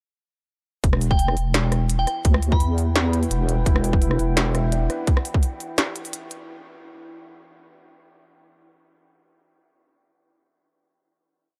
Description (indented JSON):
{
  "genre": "half-time drum and bass",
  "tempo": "170 BPM",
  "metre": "4/4",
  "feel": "half-time",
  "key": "E minor",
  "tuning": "A4 = 440 Hz",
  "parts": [
    { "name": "deep dark ambient pad", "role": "sustained chords", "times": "2.0-6.5 s", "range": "E4 to G5", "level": "-35 LUFS", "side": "equal", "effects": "chorus, built-in reverb, sidechain pumping" },
    { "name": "deep soft wobble bass", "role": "bass", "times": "0.8-4.9 s", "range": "E1 to E2", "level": "-24 LUFS", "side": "equal", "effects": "chorus" },
    { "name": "electronic kick drum", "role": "drums", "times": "0.8-5.4 s", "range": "none", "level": "-21 LUFS", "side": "equal", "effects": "none" },
    { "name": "industrial drum kit", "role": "drums", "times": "0.8-6.4 s", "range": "hi-hat, rim click, snare drum", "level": "-28 LUFS", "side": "equal", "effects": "none" },
    { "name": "glassy synth bell", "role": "melody", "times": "1.1-2.9 s", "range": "G5 to B5", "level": "-32 LUFS", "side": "equal", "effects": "chorus, phaser, tape echo" },
    { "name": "felt-muted upright piano", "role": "arpeggios", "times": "3.7-5.1 s", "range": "B3 to E5", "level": "-36 LUFS", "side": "equal", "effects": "tape echo" }
  ],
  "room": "little or no reverb",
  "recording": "dark, warm production",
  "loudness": "-21 LUFS",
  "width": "mono",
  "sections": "0.8-6.5 drop",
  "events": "drop 0.8-6.5",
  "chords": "0.8 Emadd9"
}